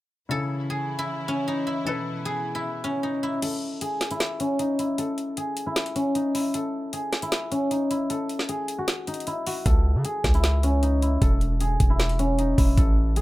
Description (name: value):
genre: hip hop, trap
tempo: 154 BPM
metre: 4/4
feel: half-time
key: C# minor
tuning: A4 = 441 Hz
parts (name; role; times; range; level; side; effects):
- guzheng; melody; 0.3-13.2 s; C#4 to A4; -26 LUFS; left 1 dB; low-pass filter
- clear concert grand piano; accompaniment; 0.3-3.4 s; C#3 to B4; -33 LUFS; left 2 dB; none
- warm chamber string section; sustained chords; 0.3-3.4 s; B2 to E4; -36 LUFS; right 1 dB; none
- trap drum kit; drums; 3.4-13.2 s; crash cymbal, hi-hat, kick drum, snare drum; -24 LUFS; equal; none
- distorted 808-style bass; bass; 9.7-13.2 s; E1 to C#3; -22 LUFS; equal; distortion
room: light reverb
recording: none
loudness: -22 LUFS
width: side -18 dB against mid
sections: 0.3-3.4 A section; 3.4-13.2 B section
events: kick muted 3.4-9.7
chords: 0.3 C#m; 1.9 E5; 3.4 N.C.; 9.7 C#m; 11.2 Eadd11